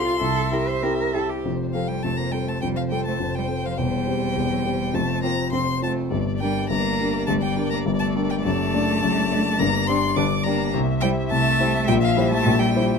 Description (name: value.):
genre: quick classical-period movement for piano quartet.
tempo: 104 BPM.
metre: 4/4.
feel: rubato.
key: F major.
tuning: A4 = 440 Hz.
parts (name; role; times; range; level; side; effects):
rich violin; melody; 0.0-13.0 s; F5 to D6; -26 LUFS; left 4 dB; none.
rich cello; second line; 0.0-13.0 s; F3 to C5; -28 LUFS; right 7 dB; none.
rich violin; second line; 0.0-13.0 s; C5 to F5; -34 LUFS; left 2 dB; none.
warm concert grand piano; accompaniment; 0.0-13.0 s; E1 to D5; -22 LUFS; left 2 dB; none.
room: light reverb.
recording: close, detailed microphones.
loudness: -20 LUFS.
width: side -5 dB against mid.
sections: 0.0-1.4 A section; 1.4-13.0 B section.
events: none.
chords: 0.2 C; 1.4 F; 3.8 C/E; 5.0 F5; 6.1 Gm; 8.4 D/F#; 9.6 G5; 10.7 C; 11.9 C7/Bb.